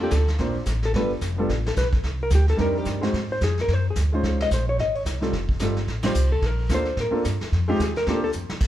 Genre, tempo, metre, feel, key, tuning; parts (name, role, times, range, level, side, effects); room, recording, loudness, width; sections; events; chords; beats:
jazz, small-group swing and bop; 219 BPM; 4/4; swing 59% on 8ths; Bb major; A4 = 442 Hz
hollow-body jazz guitar; melody; 0.0-8.3 s; G4 to Eb5; -26 LUFS; left 1 dB
warm baby grand piano; accompaniment; 0.0-8.2 s; G3 to C5; -26 LUFS; right 1 dB
upright bass; bass; 0.0-8.7 s; F1 to A2; -24 LUFS; equal
vintage brush drum kit; drums; 0.1-8.7 s; brushed snare drum, crash cymbal, hi-hat, kick drum, ride cymbal, snare drum; -29 LUFS; equal
moderate large studio reverb, RT60 1.2 s; heard from further back in the room; -21 LUFS; side -12 dB against mid
0.0-8.6 A section
band accent 6.0; drum fill 8.3
0.0 Bbmaj7; 0.9 G7; 2.0 Cm9; 3.1 Ab7; 4.2 Dbmaj7; 5.3 F7; 6.4 Bbmaj7; 7.5 Fm7; 8.1 Bb
0.12 0.40 0.67 | 0.95 1.22 1.50 1.77 | 2.04 2.32 2.59 2.87 | 3.14 3.41 3.69 3.96 | 4.24 4.51 4.78 5.06 | 5.33 5.61 5.88 6.15 | 6.42 6.70 6.97 7.25 | 7.52 7.79 8.06 8.34 | 8.61